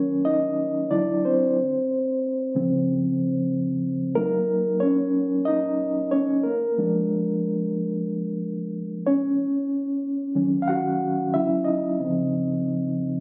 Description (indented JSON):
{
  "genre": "R&B",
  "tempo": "92 BPM",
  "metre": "4/4",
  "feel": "swing 64% on 16ths",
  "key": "Eb dorian",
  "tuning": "A4 = 440 Hz",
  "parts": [
    { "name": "mellow reed electric piano", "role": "solo", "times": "0.0-13.2 s", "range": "Db3 to Gb5", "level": "-24 LUFS", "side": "equal", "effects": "medium tremolo" }
  ],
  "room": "light reverb",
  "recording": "recorded on a phone in the room, club reverb, compression",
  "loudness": "-24 LUFS",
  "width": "mono",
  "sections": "0.0-13.2 A section",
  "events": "reed electric piano solo 0.0-13.2",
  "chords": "0.0 Ebm7; 0.9 Dadd9; 1.6 Dbmaj7; 4.2 Gb6; 6.4 Bb7/F; 9.4 Ebm7; 11.3 Dmaj9; 12.0 Dbmaj9"
}